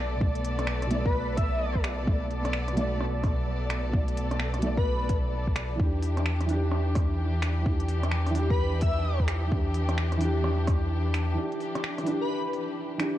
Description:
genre	future garage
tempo	129 BPM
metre	4/4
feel	swing 62% on 16ths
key	unclear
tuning	A4 = 440 Hz
part	felt-muted upright piano	accompaniment	0.0-13.2 s	B2 to D5	-32 LUFS	right 1 dB	sidechain pumping, analog delay
part	rich studio string section	sustained chords	0.0-13.2 s	E3 to D5	-34 LUFS	left 2 dB	sidechain pumping
part	warm sub bass	bass	0.0-11.4 s	B1 to E2	-28 LUFS	equal	none
part	electronic kick drum	drums	0.2-10.8 s	none	-27 LUFS	equal	none
part	organic electronic drum kit	drums	0.4-13.1 s	finger snaps, hi-hat, rim click	-35 LUFS	equal	none
part	airy dreamy lead	melody	1.1-1.7, 4.8-5.1, 8.5-9.2, 12.2-12.5 s	B4 to E5	-34 LUFS	left 2 dB	chorus, tape echo
room	light reverb, digital ambience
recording	cassette tape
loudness	-25 LUFS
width	side -13 dB against mid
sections	0.0-13.2 A section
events	break 11.4-13.2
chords	0.0 Bm7; 5.8 Em7

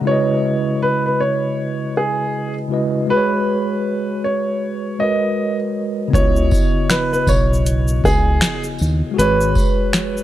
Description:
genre	lo-fi hip hop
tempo	79 BPM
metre	4/4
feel	swing 59% on 16ths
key	C# dorian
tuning	A4 = 440 Hz
part	tine electric piano	accompaniment	0.0-10.2 s	C#3 to D#5	-20 LUFS	equal	medium stereo tremolo
part	clear upright piano	melody	0.1-10.2 s	G#4 to D#5	-21 LUFS	right 1 dB	none
part	fingered electric bass	bass	6.1-9.5 s	G#1 to D#2	-18 LUFS	equal	none
part	booming analog drum machine	drums	6.1-10.2 s	finger snaps, hi-hat, kick drum, shaker, snare drum	-18 LUFS	equal	none
part	tambourine	percussion	6.5-9.8 s	none	-35 LUFS	left 3 dB	none
room	light reverb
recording	cassette tape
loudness	-15 LUFS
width	side -13 dB against mid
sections	0.0-6.1 A section; 6.1-10.2 B section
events	none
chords	0.1 C#m11; 3.1 G#m11; 6.1 C#m11; 9.2 G#m11

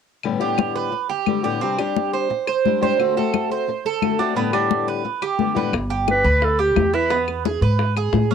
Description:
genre	latin, Cuban son and guajira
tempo	175 BPM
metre	4/4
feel	straight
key	G major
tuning	A4 = 442 Hz
part	fingerpicked old ladder-braced acoustic guitar	accompaniment	0.2-5.7 s	G2 to G4	-24 LUFS	left 9 dB	plate reverb
part	claves	percussion	0.2-8.1 s	none	-30 LUFS	left 12 dB	none
part	congas	percussion	0.2-8.3 s	none	-24 LUFS	left 14 dB	none
part	Cuban tres	arpeggios	0.4-8.3 s	B3 to C5	-22 LUFS	right 9 dB	plate reverb
part	upright bass	bass	5.7-8.3 s	G1 to A2	-21 LUFS	equal	none
part	bongos	percussion	5.7-8.3 s	none	-29 LUFS	left 12 dB	none
part	warm clarinet	melody	6.1-7.3 s	G4 to B4	-18 LUFS	equal	cassette tape, plate reverb
room	moderate booth ambience, RT60 0.2 s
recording	home recording on cassette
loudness	-18 LUFS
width	side -7 dB against mid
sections	0.2-5.7 A section; 5.7-8.3 B section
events	none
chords	0.2 Gadd9; 1.6 Csus2; 3.0 D7; 4.4 Gadd9; 5.7 G; 7.1 E

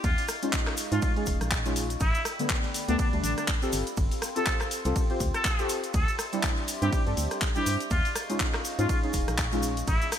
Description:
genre	deep house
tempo	122 BPM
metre	4/4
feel	swing 57% on 16ths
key	unclear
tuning	A4 = 440 Hz
part	trumpet with straight mute	melody	0.0-10.1 s	D4 to A4	-33 LUFS	equal	digital delay
part	warbly tape-like pad	sustained chords	0.0-10.2 s	G4 to Db6	-39 LUFS	equal	chorus, built-in reverb, sidechain pumping
part	organ-like FM bass	bass	0.0-10.0 s	Eb1 to Ab2	-30 LUFS	equal	sidechain pumping
part	deep house drum kit	drums	0.0-10.2 s	handclaps, hi-hat, ride cymbal, rim click	-33 LUFS	left 1 dB	overdrive
part	electronic kick drum	drums	0.0-10.0 s	none	-28 LUFS	equal	none
part	cabasa	percussion	0.0-10.2 s	none	-40 LUFS	right 4 dB	none
part	deep mellow chord stab	stabs	0.4-9.7 s	D3 to C5	-32 LUFS	equal	chorus, sidechain pumping, ping-pong delay
room	light reverb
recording	bright 1980s-style digital production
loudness	-25 LUFS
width	side -9 dB against mid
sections	0.0-10.2 A section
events	none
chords	0.0 Eb9sus4; 2.0 A9sus4; 3.7 G9sus4; 5.9 D9sus4; 7.9 Eb9sus4

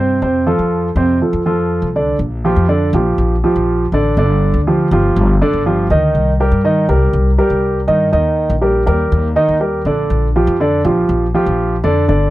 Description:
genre	latin, Cuban son and guajira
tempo	122 BPM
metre	4/4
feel	straight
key	Bb major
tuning	A4 = 439 Hz
part	warm grand piano	arpeggios	0.0-12.3 s	C3 to Eb5	-14 LUFS	right 1 dB	none
part	upright bass	bass	0.0-12.3 s	G1 to G2	-16 LUFS	left 1 dB	none
room	little or no reverb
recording	dry, close 1970s-style studio recording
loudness	-12 LUFS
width	side -16 dB against mid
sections	0.0-2.2 A section; 2.2-12.3 B section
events	none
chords	0.2 F; 2.2 Bb6; 4.2 G5; 6.2 Cm7; 8.1 Ebmaj7; 10.1 Bb6

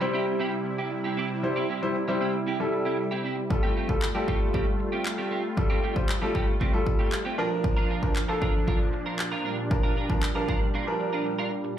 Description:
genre	dance-pop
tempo	116 BPM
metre	4/4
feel	straight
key	unclear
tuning	A4 = 440 Hz
part	clear concert grand piano	accompaniment	0.0-11.3 s	F3 to C5	-30 LUFS	left 1 dB	sidechain pumping, slapback echo
part	filtered supersaw swell	sustained chords	0.0-11.8 s	Bb2 to F4	-31 LUFS	right 1 dB	sidechain pumping
part	clean electric guitar	riff	0.0-11.7 s	A3 to Bb4	-33 LUFS	right 4 dB	analog chorus, slapback echo
part	house drum kit	drums	3.5-10.6 s	handclaps, kick drum	-26 LUFS	equal	none
room	light reverb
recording	live gig heard through the venue's PA, club reverb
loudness	-24 LUFS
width	side -10 dB against mid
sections	0.0-11.8 A section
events	break 10.7-11.8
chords	0.0 C; 3.5 Fadd9; 7.4 Bb

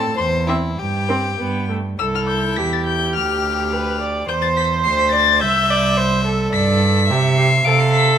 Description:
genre	quick classical-period movement for string quartet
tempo	106 BPM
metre	2/4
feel	rubato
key	C major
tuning	A4 = 441 Hz
part	dark violin	melody	0.0-8.2 s	E5 to D7	-20 LUFS	left 6 dB	none
part	rich violin	second line	0.0-8.2 s	E4 to F5	-24 LUFS	left 3 dB	none
part	rich viola	accompaniment	0.0-8.2 s	A3 to E5	-21 LUFS	right 2 dB	none
part	rich cello	bass	0.0-8.2 s	C2 to C3	-20 LUFS	right 3 dB	none
room	moderate recital hall reverb, RT60 1.5 s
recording	none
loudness	-15 LUFS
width	side -8 dB against mid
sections	0.0-2.0 A section; 2.0-8.2 B section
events	none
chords	0.0 Am; 0.8 C5/G; 1.4 G; 2.0 C; 3.1 G5/D; 4.3 C/E; 5.4 C; 6.5 G; 7.1 C; 7.7 F/C

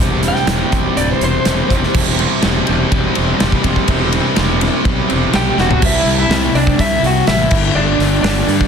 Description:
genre	quiet-loud alternative rock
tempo	124 BPM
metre	4/4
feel	straight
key	unclear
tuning	A4 = 441 Hz
part	fuzz guitar	riff	0.0-5.8 s	C3 to C4	-20 LUFS	right 14 dB	distortion
part	thick fuzz guitar	riff	0.0-8.7 s	G2 to C4	-19 LUFS	left 11 dB	distortion
part	fuzz fingered electric bass	bass	0.0-8.7 s	D1 to G2	-19 LUFS	equal	overdrive
part	big rock drum kit	drums	0.2-8.7 s	crash cymbal, hi-hat, kick drum, ride cymbal, snare drum, toms	-17 LUFS	equal	none
part	electric guitar through a small old amp	melody	0.3-1.9, 5.4-8.7 s	D4 to G5	-18 LUFS	right 2 dB	tremolo, plate reverb
room	light reverb, small room ambience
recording	dense, heavily limited modern master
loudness	-12 LUFS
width	side -7 dB against mid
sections	0.0-1.9 A section; 1.9-5.8 B section; 5.8-8.7 C section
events	clean electric guitar solo 0.0-1.9; drum fill 5.6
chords	0.0 C/E; 5.8 C; 7.5 G5

